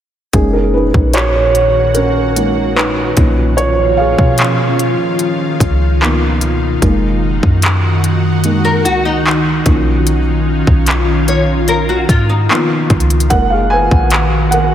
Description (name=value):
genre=contemporary R&B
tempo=74 BPM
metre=4/4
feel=straight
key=F# major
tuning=A4 = 439 Hz
part: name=felt-muted upright piano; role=accompaniment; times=0.3-14.7 s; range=A#2 to G#5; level=-16 LUFS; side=right 1 dB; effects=none
part: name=ethereal airy pad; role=sustained chords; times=0.8-14.7 s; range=A#2 to F#4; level=-17 LUFS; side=equal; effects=ensemble chorus, built-in reverb, sidechain pumping
part: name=clean 808-style bass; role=bass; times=0.3-14.7 s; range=F#1 to B2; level=-16 LUFS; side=equal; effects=none
part: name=trap drum kit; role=drums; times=0.3-14.7 s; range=handclaps, hi-hat, kick drum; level=-16 LUFS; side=equal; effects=none
part: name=nylon-string guitar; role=arpeggios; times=8.6-12.7 s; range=D#4 to C#5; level=-17 LUFS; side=left 2 dB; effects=ensemble chorus, tape echo
room=moderate lush hall reverb, RT60 2.8 s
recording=dreamy mix soaked in reverb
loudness=-10 LUFS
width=side -10 dB against mid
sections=0.3-14.7 A section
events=felt piano solo 0.3-14.7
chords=0.3 F#6; 3.2 Bmaj9#11; 6.0 C#13; 6.8 F#6; 9.7 Bmaj9#11; 12.5 C#13; 13.3 F#6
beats=| 0.34 1.15 1.96 2.77 | 3.58 4.39 5.20 6.01 | 6.82 7.63 8.44 9.25 | 10.06 10.88 11.69 12.50 | 13.31 14.12